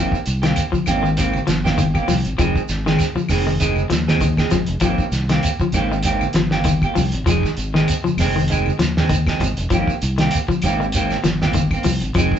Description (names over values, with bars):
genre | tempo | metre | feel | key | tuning
afrobeat | 98 BPM | 4/4 | swing 56% on 16ths | unclear | A4 = 440 Hz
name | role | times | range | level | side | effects
electric guitar at the edge of break-up | arpeggios | 0.0-12.3 s | Eb3 to F3 | -22 LUFS | left 5 dB | none
electric guitar through a small old amp | stabs | 0.0-12.4 s | Eb3 to Ab4 | -23 LUFS | right 3 dB | none
fingered electric bass | bass | 0.0-12.3 s | F1 to Eb2 | -23 LUFS | equal | none
cloth-damped thuddy drum kit | drums | 0.1-12.4 s | hi-hat, kick drum, snare drum | -22 LUFS | right 1 dB | none
shekere | percussion | 0.1-12.4 s | none | -27 LUFS | right 1 dB | none
claves | percussion | 0.6-12.3 s | none | -34 LUFS | left 5 dB | none
congas | percussion | 0.6-12.3 s | none | -27 LUFS | right 2 dB | none
room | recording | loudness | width
moderate studio reverb, RT60 0.9 s | band playing live in one room, nothing above 8.0 kHz | -16 LUFS | side -9 dB against mid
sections
0.0-12.4 A section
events
none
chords
0.0 Abmaj9; 2.4 Fm7; 4.8 Abmaj9; 7.3 Fm7; 9.7 Abmaj9